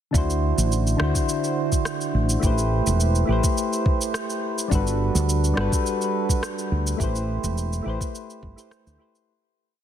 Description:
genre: sunset chillout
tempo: 105 BPM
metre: 4/4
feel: straight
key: A dorian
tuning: A4 = 440 Hz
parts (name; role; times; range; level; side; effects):
- soft electric-piano-like synth keys; accompaniment; 0.1-9.3 s; D3 to C5; -25 LUFS; moving between left 4 dB and right 5 dB; chorus, auto-pan, ping-pong delay
- woody fretless electric bass; bass; 0.1-9.0 s; E1 to D2; -22 LUFS; equal; none
- electronic kick drum; drums; 0.1-8.5 s; none; -23 LUFS; equal; none
- electronic shaker and rim click; drums; 0.1-9.3 s; none; -30 LUFS; right 1 dB; none
room: light reverb, digital ambience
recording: dense, heavily limited modern master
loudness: -20 LUFS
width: side -10 dB against mid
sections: 0.1-9.3 groove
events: fade-out 6.2-9.3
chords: 0.1 D9; 2.4 Am9; 4.7 Gmaj7; 7.0 Am9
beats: | 0.14 0.72 1.29 1.86 | 2.43 3.00 3.57 4.14 | 4.72 5.29 5.86 6.43 | 7.00 7.57 8.14 8.72

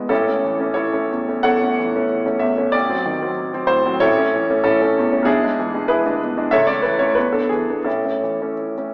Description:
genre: classical, romantic character piece for solo piano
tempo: 93 BPM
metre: 4/4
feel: uneven beats, rubato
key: A major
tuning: A4 = 440 Hz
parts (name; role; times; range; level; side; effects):
- bright upright piano; solo; 0.0-8.9 s; A1 to F#5; -16 LUFS; equal; none
room: wet recital hall reverb, RT60 1.5 s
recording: heard from further back in the room, small speaker sound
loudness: -16 LUFS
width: side -37 dB against mid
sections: 0.0-8.9 A section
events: none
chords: 0.1 A; 2.7 Adim7; 4.0 A; 5.3 E7/B; 6.5 A/C#; 7.2 E7; 7.9 A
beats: | 0.10 0.76 1.46 2.11 | 2.74 3.38 4.02 4.65 | 5.26 5.88 6.50 7.15 | 7.85 8.58

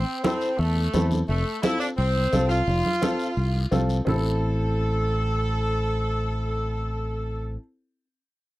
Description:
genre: latin, cumbia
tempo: 172 BPM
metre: 4/4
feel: straight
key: A minor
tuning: A4 = 437 Hz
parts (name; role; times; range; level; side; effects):
- edgy saxophone section; melody; 0.0-7.6 s; A3 to A4; -28 LUFS; equal; none
- fingered electric bass; bass; 0.0-7.6 s; F1 to E2; -24 LUFS; equal; none
- clear upright piano; accompaniment; 0.2-7.6 s; C4 to A4; -30 LUFS; left 2 dB; none
- congas; percussion; 0.2-4.1 s; none; -28 LUFS; right 3 dB; none
- guiro; percussion; 0.2-4.1 s; none; -40 LUFS; left 6 dB; none
room: little or no reverb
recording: dry, close 1970s-style studio recording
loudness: -22 LUFS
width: side -17 dB against mid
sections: 0.0-4.1 A section; 4.1-6.9 B section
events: none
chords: 0.0 Am; 1.3 F; 4.1 Am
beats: 0.24 0.59 0.94 | 1.28 1.63 1.98 2.33 | 2.67 3.02 3.37 3.72 | 4.07 4.42 4.76 5.11 | 5.46 5.81 6.16 6.50

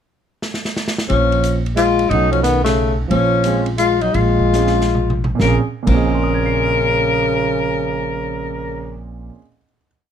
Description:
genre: jazz, small-group swing and bop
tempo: 126-180 BPM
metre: 3/4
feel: swing 65% on 8ths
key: Bb minor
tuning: A4 = 439 Hz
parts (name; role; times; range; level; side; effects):
- vintage drum kit; drums; 0.4-6.0 s; crash cymbal, hi-hat, kick drum, ride cymbal, snare drum, toms; -25 LUFS; right 1 dB; none
- breathy tenor saxophone; melody; 1.1-9.0 s; A3 to Bb4; -18 LUFS; left 5 dB; none
- mellow trombone; second line; 1.1-9.0 s; Db3 to Ab3; -23 LUFS; right 6 dB; none
- upright bass; bass; 1.1-9.3 s; Bb1 to B1; -20 LUFS; equal; none
- warm grand piano; accompaniment; 2.1-9.9 s; Bb2 to C7; -24 LUFS; right 6 dB; none
room: little or no reverb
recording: close, detailed microphones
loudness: -15 LUFS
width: side -8 dB against mid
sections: 0.1-1.1 pickup bar; 1.1-5.4 A section; 5.4-8.2 final chord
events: drum fill 0.4-1.1, 4.5-5.4; band accent 2.6; slowing down 3.1-5.4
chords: 0.1 N.C.; 1.1 Bbm7; 2.1 B9; 3.1 Bbm7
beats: | 0.10 0.43 0.77 | 1.10 1.44 1.77 | 2.11 2.44 2.78 | 3.11 3.45 3.79 | 4.15 4.53 4.95 | 5.40 5.87 6.35 | 6.82 7.30 7.77

